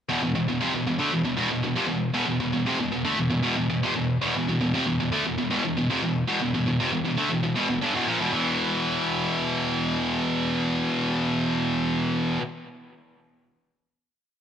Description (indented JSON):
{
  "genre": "metal",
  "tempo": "117 BPM",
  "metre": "4/4",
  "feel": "straight",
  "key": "unclear",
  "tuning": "A4 = 437 Hz",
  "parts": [
    { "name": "high-gain distorted guitar", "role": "solo", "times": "0.1-12.4 s", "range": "E2 to A3", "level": "-23 LUFS", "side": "equal", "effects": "distortion" }
  ],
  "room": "light reverb",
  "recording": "rough home demo mix",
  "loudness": "-23 LUFS",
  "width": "side -8 dB against mid",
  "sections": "0.1-8.3 riff; 8.3-12.4 final chord",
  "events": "none",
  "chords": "0.1 E5"
}